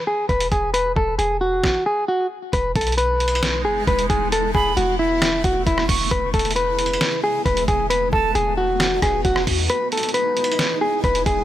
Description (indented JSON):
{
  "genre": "hip hop, trap",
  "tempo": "134 BPM",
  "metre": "4/4",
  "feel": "half-time",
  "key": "E major",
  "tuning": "A4 = 440 Hz",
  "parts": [
    { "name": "clean electric guitar", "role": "melody", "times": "0.0-11.4 s", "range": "E4 to B4", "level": "-20 LUFS", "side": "left 1 dB", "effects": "ping-pong delay" },
    { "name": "clean 808-style bass", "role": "bass", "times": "0.3-11.4 s", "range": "D#1 to E2", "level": "-26 LUFS", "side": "equal", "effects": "none" },
    { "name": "lo-fi sampler-style drum kit", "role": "drums", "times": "0.3-11.4 s", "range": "hi-hat, kick drum, rim click, snare drum", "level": "-23 LUFS", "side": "equal", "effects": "overdrive" },
    { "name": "granular cloud pad", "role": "sustained chords", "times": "2.9-11.4 s", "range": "C#3 to F#4", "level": "-28 LUFS", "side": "equal", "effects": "built-in reverb, phaser" },
    { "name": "breathy silver concert flute", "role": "second line", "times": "4.5-8.3 s", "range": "A5 to C#6", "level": "-27 LUFS", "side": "right 5 dB", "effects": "ping-pong delay" }
  ],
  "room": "little or no reverb",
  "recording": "none",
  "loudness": "-17 LUFS",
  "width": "side -12 dB against mid",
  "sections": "0.0-2.5 A section; 2.5-11.4 B section",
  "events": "kick muted 9.7-10.6",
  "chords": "0.0 E; 2.5 Emaj7; 4.3 Aadd9/E; 6.1 C#m7/E; 7.9 B7/E; 9.7 Emaj7",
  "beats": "0.29 | 0.74 1.19 1.64 2.08 | 2.53 2.98 3.43 3.88 | 4.32 4.77 5.22 5.67 | 6.11 6.56 7.01 7.46 | 7.91 8.35 8.80 9.25 | 9.70 10.14 10.59 11.04"
}